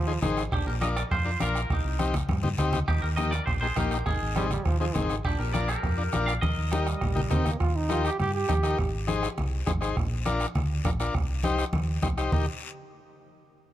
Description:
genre	latin, cumbia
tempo	203 BPM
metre	4/4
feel	straight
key	Eb major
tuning	A4 = 440 Hz
part	bright trombone	second line	0.0-0.4, 4.4-8.9, 12.3-12.5 s	Eb3 to G4	-34 LUFS	right 4 dB	none
part	hollow-body short-scale fingered electric bass	bass	0.0-12.5 s	Ab1 to G2	-29 LUFS	equal	none
part	overdriven combo organ	accompaniment	0.1-12.5 s	Bb3 to C5	-32 LUFS	left 4 dB	none
part	bombo	percussion	0.2-12.4 s	none	-31 LUFS	right 2 dB	none
part	congas	percussion	0.2-12.4 s	none	-33 LUFS	left 2 dB	none
part	guiro	percussion	0.2-12.4 s	none	-43 LUFS	left 7 dB	none
part	twangy electric guitar	melody	0.5-7.3 s	D4 to F5	-33 LUFS	equal	spring reverb
room	light reverb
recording	dark, warm production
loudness	-24 LUFS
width	side -12 dB against mid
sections	0.0-7.6 A section; 7.6-12.3 B section; 12.3-13.5 C section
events	drum fill 2.0-2.9, 6.4-7.6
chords	0.0 Ab; 0.5 Bb; 1.7 Cm; 2.9 Eb; 4.1 Ab; 5.2 Bb; 6.4 Eb; 8.8 Ab; 10.0 Bb; 11.1 Cm; 12.3 Eb

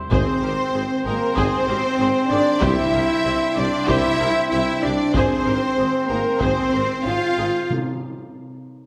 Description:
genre	cinematic, epic orchestral film score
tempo	95 BPM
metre	4/4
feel	straight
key	unclear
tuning	A4 = 440 Hz
part	clear trumpet	stabs	0.0-7.7 s	C5	-31 LUFS	equal	none
part	warm symphonic violin section	melody	0.1-7.7 s	Bb4 to F5	-31 LUFS	equal	none
part	rich symphonic violin section	second line	0.1-7.7 s	Bb4 to F5	-29 LUFS	equal	none
part	warm symphonic viola section	accompaniment	0.1-7.5 s	Eb3 to C5	-30 LUFS	equal	none
part	dark French horn section	sustained chords	0.1-7.7 s	Bb3 to F4	-26 LUFS	equal	none
part	warm trombone section	sustained chords	0.1-7.7 s	G2 to C4	-33 LUFS	equal	none
part	mellow tuba	bass	0.1-7.5 s	Ab1 to C2	-32 LUFS	equal	none
part	rich symphonic cello section	bass	0.1-7.7 s	Bb3 to F4	-29 LUFS	equal	none
part	warm studio double bass section	bass	0.1-7.5 s	Ab1 to C2	-32 LUFS	equal	none
part	solo taiko drums	drums	0.1-7.0 s	none	-30 LUFS	equal	none
part	timpani	percussion	7.7-8.6 s	C3	-30 LUFS	equal	none
room	wet scoring stage reverb, RT60 1.6 s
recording	none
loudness	-20 LUFS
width	mono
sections	0.0-8.9 A section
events	break 7.7-8.9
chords	0.1 Ab; 2.6 C; 5.1 Ab; 7.7 N.C.

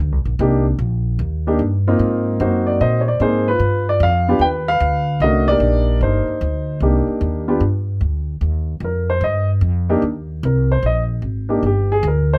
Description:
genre	jazz piano trio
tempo	150 BPM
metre	4/4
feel	swing 67% on 8ths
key	C minor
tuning	A4 = 442 Hz
part	upright bass	bass	0.0-12.4 s	G1 to Bb2	-21 LUFS	equal	none
part	dark upright piano	melody	0.4-12.4 s	A3 to G5	-20 LUFS	equal	none
room	light reverb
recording	none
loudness	-18 LUFS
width	mono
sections	0.0-8.4 A section; 8.4-12.4 B section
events	upright piano solo 8.4-12.4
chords	0.0 Cm7; 2.0 Ab7; 3.6 G7; 5.2 Cm7; 7.6 G5; 8.4 Cm7

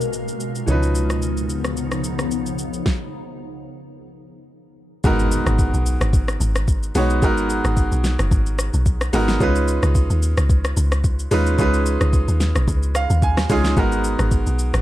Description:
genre	amapiano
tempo	110 BPM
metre	4/4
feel	swing 55% on 16ths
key	G# dorian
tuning	A4 = 440 Hz
part	clear grand piano	accompaniment	0.0-14.8 s	E3 to G#5	-22 LUFS	right 1 dB	none
part	granular cloud pad	sustained chords	0.0-2.8 s	B2 to E#5	-26 LUFS	left 2 dB	built-in reverb, phaser
part	smooth R&B drum kit	drums	0.0-14.8 s	hi-hat, kick drum, rim click, shaker, snare drum	-22 LUFS	equal	none
part	downlifter and impact	sound effects	0.1-0.7, 5.0-7.2 s	none	-31 LUFS	equal	none
part	woody FM bass	bass	0.7-2.8 s	C#2	-24 LUFS	equal	none
part	deep log drum bass	bass	5.0-14.8 s	F#1 to D#2	-19 LUFS	equal	none
room	little or no reverb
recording	none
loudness	-17 LUFS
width	side -14 dB against mid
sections	0.0-5.0 A section; 5.0-14.8 B section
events	stop 2.9-5.0; drop 5.0-14.8; impact 5.0-7.2; grand piano fill 12.7-13.8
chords	0.0 G#m9; 0.7 C#9; 5.0 G#m9; 9.4 C#9; 13.8 G#m9

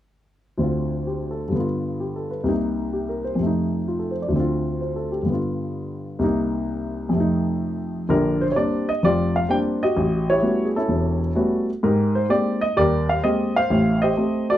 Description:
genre	solo jazz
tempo	128 BPM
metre	4/4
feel	swing 68% on 8ths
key	Bb major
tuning	A4 = 440 Hz
part	dark baby grand piano	solo	0.6-14.6 s	E1 to G5	-20 LUFS	equal	none
room	light reverb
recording	dark, warm production, faint mains hum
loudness	-20 LUFS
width	side -12 dB against mid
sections	0.6-8.1 A section; 8.1-14.6 B section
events	none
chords	0.6 Dm7; 1.5 G7; 2.5 Cm7; 3.4 F7; 4.3 Dm7; 5.3 G7; 6.2 Cm7; 7.1 F7; 8.1 Bb69; 10.0 A13; 11.8 Abmaj9; 13.7 Am7b5

